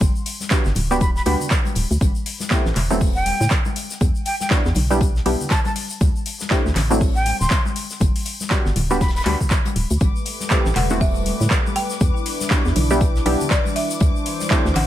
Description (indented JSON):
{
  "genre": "deep house",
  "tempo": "120 BPM",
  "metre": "4/4",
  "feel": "swing 59% on 16ths",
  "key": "A dorian",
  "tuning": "A4 = 439 Hz",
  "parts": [
    { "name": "organ-like FM bass", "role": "bass", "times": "0.0-14.9 s", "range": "D1 to A2", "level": "-21 LUFS", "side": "equal", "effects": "sidechain pumping" },
    { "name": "damped 70s drum kit", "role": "drums", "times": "0.0-14.9 s", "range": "hi-hat, snare drum", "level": "-35 LUFS", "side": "left 4 dB", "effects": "high-pass filter on hats, small room ambience, high-pass filter on snare, high-pass filter on room" },
    { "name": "electronic kick drum", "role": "drums", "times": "0.0-14.6 s", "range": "none", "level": "-19 LUFS", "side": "equal", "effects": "overdrive, small room ambience" },
    { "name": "congas", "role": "percussion", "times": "0.0-14.9 s", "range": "none", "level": "-31 LUFS", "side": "left 3 dB", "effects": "sidechain pumping on perc" },
    { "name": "tube shaker", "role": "percussion", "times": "0.0-14.7 s", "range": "none", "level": "-33 LUFS", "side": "left 4 dB", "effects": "none" },
    { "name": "deep house drum kit", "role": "drums", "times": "0.3-14.9 s", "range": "handclaps, hi-hat", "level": "-25 LUFS", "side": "equal", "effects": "overdrive, small room ambience" },
    { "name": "filtered dub chord stab", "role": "stabs", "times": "0.5-14.7 s", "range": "F#3 to G4", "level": "-24 LUFS", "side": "right 1 dB", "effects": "chorus, vintage 12-bit sampler grit, sidechain pumping, ping-pong delay" },
    { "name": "breathy mellow silver concert flute", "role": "melody", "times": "0.9-9.4 s", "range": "G5 to C6", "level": "-27 LUFS", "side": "equal", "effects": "dub echo" },
    { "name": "warm analog pad", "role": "sustained chords", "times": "10.0-14.9 s", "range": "E3 to C5", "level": "-28 LUFS", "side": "equal", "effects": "chorus, sidechain pumping" },
    { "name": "rich chamber violin section", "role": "texture", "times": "10.0-14.9 s", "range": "D6", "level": "-33 LUFS", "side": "left 3 dB", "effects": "none" },
    { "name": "folk marimba with hard mallets", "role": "melody", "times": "10.8-14.9 s", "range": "D5 to G5", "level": "-28 LUFS", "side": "left 1 dB", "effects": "ping-pong delay" }
  ],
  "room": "small room ambience",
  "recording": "none",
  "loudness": "-17 LUFS",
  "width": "side -12 dB against mid",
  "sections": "0.0-14.9 A section",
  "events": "none",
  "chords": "0.0 Gmaj7; 2.0 Am9; 4.0 Em7; 6.0 D9sus4; 8.0 Gmaj7; 10.0 Am9; 12.0 Em7; 14.0 D9sus4"
}